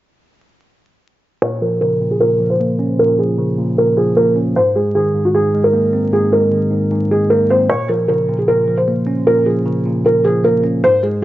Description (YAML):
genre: hip hop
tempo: 153 BPM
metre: 4/4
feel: half-time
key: Bb minor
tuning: A4 = 436 Hz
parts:
  - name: felt-muted upright piano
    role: melody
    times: 1.4-11.2 s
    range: Gb4 to Db5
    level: -14 LUFS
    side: right 1 dB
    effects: low-pass filter
  - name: bell-like tine electric piano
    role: accompaniment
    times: 1.4-11.2 s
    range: Ab2 to Db4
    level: -17 LUFS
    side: equal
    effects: low-pass filter
room: light reverb, studio reverb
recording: dry, gritty hardware recording, vinyl crackle, nothing above 7.7 kHz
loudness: -13 LUFS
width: side -15 dB against mid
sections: 1.4-11.2 A section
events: filter sweep 1.4-11.2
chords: 1.4 Bbm; 4.6 Abadd9; 7.7 Bbm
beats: | 1.42 1.81 2.21 2.60 | 2.99 3.38 3.77 4.17 | 4.56 4.95 5.34 5.74 | 6.13 6.52 6.91 7.30 | 7.70 8.09 8.48 8.87 | 9.27 9.66 10.05 10.44 | 10.83 11.23